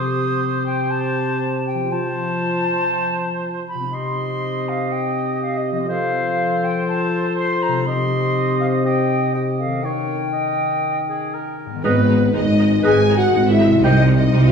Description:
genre	cinematic, heroic adventure film score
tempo	121 BPM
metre	4/4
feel	straight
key	C dorian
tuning	A4 = 439 Hz
part	clear clarinet	second line	0.0-14.0 s	F4 to C5	-27 LUFS	right 3 dB	none
part	silver concert flute	second line	0.0-14.5 s	B4 to Eb6	-24 LUFS	left 1 dB	none
part	warm oboe	second line	0.0-14.0 s	Ab4 to G5	-26 LUFS	right 2 dB	none
part	dark French horn section	sustained chords	0.0-14.5 s	F3 to G#4	-23 LUFS	left 4 dB	none
part	concert harp	arpeggios	0.0-14.5 s	G#2 to C5	-26 LUFS	left 5 dB	none
part	clear symphonic violin section	melody	11.8-14.5 s	B4 to G#5	-28 LUFS	left 3 dB	none
part	warm symphonic violin section	second line	11.8-14.5 s	B4 to G#5	-29 LUFS	left 1 dB	none
part	clear symphonic viola section	accompaniment	11.8-14.4 s	G3 to D#4	-27 LUFS	equal	none
part	rich symphonic cello section	bass	11.8-14.5 s	G#2 to C3	-19 LUFS	right 3 dB	none
part	warm symphonic double bass section	bass	11.8-14.5 s	G#1 to C2	-23 LUFS	right 4 dB	none
part	warm tuba	bass	11.8-14.5 s	G#1 to C2	-20 LUFS	right 2 dB	none
room	wet scoring stage reverb, RT60 1.8 s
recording	small room ambience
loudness	-17 LUFS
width	side -6 dB against mid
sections	0.0-11.8 A section; 11.8-14.5 B section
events	none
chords	0.0 Cm; 1.9 F; 3.9 Cm; 9.8 Eb7; 11.8 G#m; 13.8 Cm

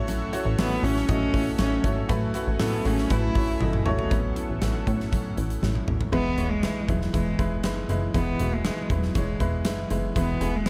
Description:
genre	piano-driven pop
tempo	119 BPM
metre	4/4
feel	straight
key	E major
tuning	A4 = 442 Hz
part	bright upright piano	accompaniment	0.0-10.7 s	B2 to D#5	-33 LUFS	equal	none
part	lush unison pad	sustained chords	0.0-6.1 s	A4 to C#6	-42 LUFS	equal	chorus
part	picked steel-string acoustic guitar	riff	0.0-10.7 s	E2 to E4	-34 LUFS	equal	none
part	plucky analog bass	bass	0.0-10.7 s	E1 to A2	-30 LUFS	equal	none
part	huge arena drum kit	drums	0.1-10.7 s	crash cymbal, hi-hat, kick drum, snare drum, toms	-31 LUFS	equal	none
part	clear cello	melody	0.6-10.7 s	F#3 to E4	-32 LUFS	equal	none
room	light reverb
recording	none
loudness	-25 LUFS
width	mono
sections	0.0-4.1 A section; 4.1-6.1 B section; 6.1-10.7 C section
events	drum fill 3.6-4.1, 5.6-6.1; upright piano solo 4.1-6.1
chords	0.0 A6; 6.1 E

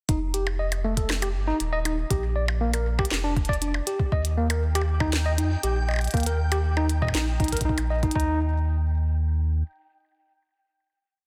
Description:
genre	IDM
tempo	119 BPM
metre	4/4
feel	straight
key	Eb major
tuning	A4 = 440 Hz
part	bright tine electric piano	arpeggios	0.1-8.4 s	A3 to Eb5	-31 LUFS	equal	tape echo
part	warm sub bass	bass	0.1-9.6 s	Eb1 to F2	-27 LUFS	equal	none
part	electronic kick drum	drums	0.1-8.3 s	none	-28 LUFS	equal	overdrive
part	glitchy drum kit	drums	0.1-8.3 s	hi-hat, percussion blips, snare drum	-33 LUFS	equal	overdrive, tape echo
part	flickering grainy texture	texture	4.7-8.2 s	G5	-41 LUFS	equal	built-in reverb
room	light reverb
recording	dense, heavily limited modern master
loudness	-25 LUFS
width	mono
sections	0.1-8.2 groove; 8.2-11.3 final note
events	none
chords	0.1 F7sus2; 2.1 Bb; 4.1 Eb; 8.2 N.C.

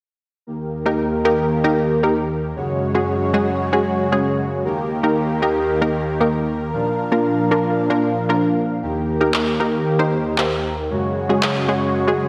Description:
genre	dance-pop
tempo	115 BPM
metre	4/4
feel	straight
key	Eb major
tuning	A4 = 440 Hz
part	soft supersaw	sustained chords	0.5-12.3 s	Eb2 to F5	-23 LUFS	equal	none
part	unison pluck	accompaniment	0.9-12.3 s	Ab3 to C5	-22 LUFS	equal	slapback echo
part	electronic handclaps	drums	9.3-11.5 s	none	-26 LUFS	equal	overdrive, slapback echo
room	wet lush hall reverb, RT60 1.9 s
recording	big arena sound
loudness	-19 LUFS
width	mono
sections	0.5-12.3 A section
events	none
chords	0.5 Eb; 2.6 Gbsus2; 4.6 Eb; 6.7 Bb; 8.8 Eb; 10.9 Gbsus2

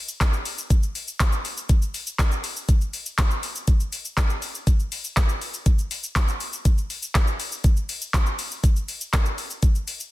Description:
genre	pop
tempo	121 BPM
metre	4/4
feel	straight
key	none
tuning	none
part	smooth R&B drum kit	drums	0.1-10.1 s	handclaps, hi-hat, kick drum, shaker, snare drum	-21 LUFS	equal	none
room	little or no reverb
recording	dense, heavily limited modern master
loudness	-21 LUFS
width	side -17 dB against mid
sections	0.0-10.1 A section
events	none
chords	none

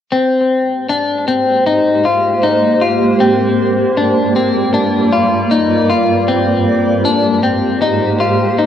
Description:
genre	dream pop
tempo	78 BPM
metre	4/4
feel	straight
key	Ab lydian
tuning	A4 = 436 Hz
part	granular cloud pad	sustained chords	1.3-8.7 s	G2 to D5	-14 LUFS	right 2 dB	built-in reverb, cassette tape
part	clean electric guitar	arpeggios	0.1-8.7 s	C4 to F4	-14 LUFS	left 3 dB	wide subtle chorus, cassette tape, analog delay
room	wet studio reverb, RT60 0.6 s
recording	home recording on cassette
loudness	-11 LUFS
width	side -9 dB against mid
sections	0.1-8.7 A section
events	none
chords	0.1 Abmaj7; 3.2 Gm7; 6.3 Abmaj7

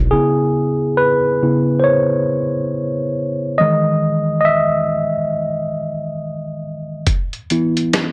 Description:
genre	lo-fi hip hop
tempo	69 BPM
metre	4/4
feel	swing 62% on 16ths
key	C# minor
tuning	A4 = 439 Hz
part	barky tine electric piano	accompaniment	0.0-8.1 s	C#3 to E5	-18 LUFS	equal	overdrive, cassette tape, low-pass filter
part	lo-fi sampler-style drum kit	drums	7.1-8.1 s	hi-hat, kick drum, snare drum	-20 LUFS	equal	none
room	moderate spring reverb, RT60 1.9 s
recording	none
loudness	-18 LUFS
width	mono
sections	0.1-8.1 A section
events	tine electric piano solo 0.1-8.1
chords	0.1 C#m7; 3.6 Emaj7; 7.1 E5

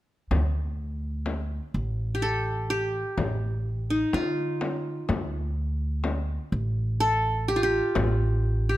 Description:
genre	Arabic maqam ensemble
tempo	126 BPM (eighths)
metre	10/8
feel	straight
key	unclear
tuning	A4 = 439 Hz
part	upright bass	bass	0.3-8.8 s	A1 to D3	-27 LUFS	equal	none
part	frame drum	percussion	0.3-8.2 s	none	-31 LUFS	left 4 dB	none
part	qanun	melody	2.1-8.8 s	Eb4 to A4	-27 LUFS	equal	none
room	light reverb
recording	close, detailed microphones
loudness	-25 LUFS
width	side -15 dB against mid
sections	0.3-8.8 A section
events	none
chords	none

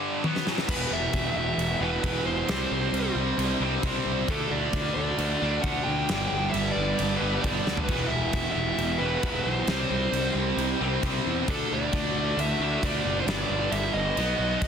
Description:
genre	heavy metal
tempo	133 BPM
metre	4/4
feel	straight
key	E minor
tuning	A4 = 440 Hz
part	high-gain distorted guitar	riff	0.0-14.6 s	E2 to D4	-28 LUFS	equal	distortion
part	big rock drum kit	drums	0.2-14.7 s	crash cymbal, kick drum, snare drum, toms	-31 LUFS	equal	none
part	high-gain lead guitar	melody	0.7-14.7 s	A4 to G5	-31 LUFS	right 1 dB	distortion
part	dark studio string section	sustained chords	0.7-14.6 s	C3 to D#5	-38 LUFS	left 2 dB	none
part	fuzz picked electric bass	bass	0.7-14.6 s	E1 to E2	-30 LUFS	equal	overdrive
room	light reverb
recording	dense, heavily limited modern master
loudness	-24 LUFS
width	side -7 dB against mid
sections	0.7-14.7 A section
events	break 0.0-0.7; drum fill 0.2-0.7, 7.7; half time 0.7-14.7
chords	0.2 E5; 0.7 Em; 2.5 C; 4.3 D; 6.1 G; 7.9 Em; 9.7 C; 11.5 D; 13.3 G

